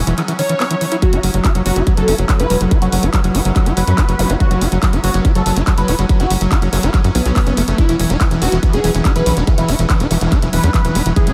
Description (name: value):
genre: psychedelic trance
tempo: 142 BPM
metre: 4/4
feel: straight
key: F# minor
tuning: A4 = 440 Hz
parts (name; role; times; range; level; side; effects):
- pulsing gated texture; sustained chords; 0.0-11.3 s; F#3 to C#4; -28 LUFS; equal; chorus, built-in reverb, sidechain pumping
- tight sequencer bass; bass; 0.0-11.3 s; E1 to F#2; -20 LUFS; equal; none
- screaming distorted acid line; riff; 0.1-11.3 s; D#3 to F#4; -22 LUFS; equal; distortion, chorus, cassette tape, sidechain pumping, tape echo
- drum and bass drum kit; drums; 0.1-11.3 s; handclaps, hi-hat; -26 LUFS; equal; none
- unison lead; melody; 0.4-11.3 s; B3 to C#5; -24 LUFS; equal; phaser, sidechain pumping, delay
- electronic kick drum; drums; 1.0-11.2 s; none; -17 LUFS; equal; none
- vowel-sweep wobble bass; second line; 1.7-10.3 s; E3 to B3; -36 LUFS; equal; none
- zap; sound effects; 4.2-4.3 s; none; -32 LUFS; equal; none
room: light reverb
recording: none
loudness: -15 LUFS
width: mono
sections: 0.0-11.3 A section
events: none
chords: 0.0 E5; 1.0 F#5; 7.8 E5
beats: 0.18 0.60 | 1.02 1.45 1.87 2.29 | 2.71 3.14 3.56 3.98 | 4.40 4.83 5.25 5.67 | 6.09 6.52 6.94 7.36 | 7.78 8.21 8.63 9.05 | 9.47 9.90 10.32 10.74 | 11.16